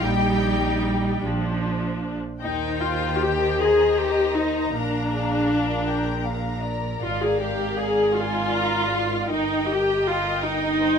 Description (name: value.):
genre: classical, slow romantic movement for string orchestra.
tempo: 52 BPM (dotted quarters).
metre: 6/8.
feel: uneven beats, rubato.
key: Eb major.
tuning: A4 = 441 Hz.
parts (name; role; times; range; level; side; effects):
clear symphonic violin section; melody; 0.0-11.0 s; F5 to Bb5; -32 LUFS; left 4 dB; none.
rich chamber violin section; second line; 0.0-11.0 s; G4 to G5; -31 LUFS; left 6 dB; none.
rich chamber viola section; accompaniment; 0.0-11.0 s; F3 to Ab4; -22 LUFS; left 1 dB; none.
clear chamber cello section; bass; 0.0-11.0 s; G2 to G3; -31 LUFS; right 5 dB; none.
clear chamber double bass section; bass; 0.0-11.0 s; G1 to Eb2; -30 LUFS; right 3 dB; none.
room: light reverb.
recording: minimal, uncompressed stereo recording.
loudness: -21 LUFS.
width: side -7 dB against mid.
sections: 0.0-2.4 A section; 2.4-11.0 B section.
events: none.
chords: 0.0 Eb/Bb; 1.2 Bb; 2.4 Eb; 4.7 Bb; 7.0 Bb7/Ab; 9.3 Eb/G.